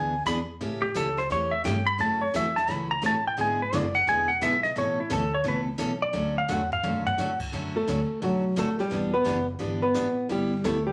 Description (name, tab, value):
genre	country, western swing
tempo	173 BPM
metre	4/4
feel	swing 63% on 8ths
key	D major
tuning	A4 = 443 Hz
part	clean lap steel guitar	melody	0.0-7.4 s	E4 to B5	-28 LUFS	equal	none
part	picked steel-string acoustic guitar	accompaniment	0.0-10.8 s	B2 to A4	-33 LUFS	equal	none
part	upright bass	bass	0.0-10.9 s	E1 to A2	-38 LUFS	equal	none
part	jazz brush drum kit	drums	0.3-10.9 s	brushed snare drum, crash cymbal, hi-hat, kick drum, snare drum, toms	-41 LUFS	equal	none
part	hollow-body jazz guitar	second line	7.8-10.9 s	F#3 to B4	-28 LUFS	equal	none
room	wet studio reverb, RT60 0.6 s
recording	none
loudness	-26 LUFS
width	mono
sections	0.0-7.5 A section; 7.5-10.9 A section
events	electric slide guitar solo 0.0-7.5; drum fill 6.5-7.2; hollow-body jazz guitar solo 7.5-10.9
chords	0.0 E7; 0.6 A7; 2.0 F#m7; 3.4 E7; 4.8 Aadd9; 6.1 Dmaj7; 8.9 Em7; 10.3 G6